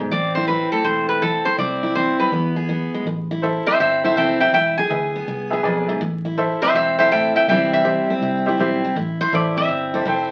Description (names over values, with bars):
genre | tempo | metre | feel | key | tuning
country | 163 BPM | 4/4 | swing 65% on 8ths | A minor | A4 = 440 Hz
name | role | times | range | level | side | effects
picked steel-string acoustic guitar | accompaniment | 0.0-10.3 s | E2 to G#4 | -24 LUFS | equal | none
vintage muted fingered electric bass | bass | 0.0-10.3 s | E1 to E2 | -31 LUFS | equal | none
lap resonator guitar | melody | 0.1-10.3 s | A4 to G#5 | -21 LUFS | equal | none
clear grand piano | accompaniment | 3.4-10.3 s | G4 to G#5 | -26 LUFS | equal | none
room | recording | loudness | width
wet studio reverb, RT60 0.6 s | very old 78 rpm record, vinyl crackle | -19 LUFS | mono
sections
0.0-3.1 A section; 3.1-10.3 B section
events
resonator guitar played with a steel bar solo 3.1-10.3; grand piano fill 5.5-6.0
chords
0.1 Am; 1.6 C; 2.3 E; 3.1 Am; 4.5 E; 6.0 Am; 7.5 C; 9.0 Am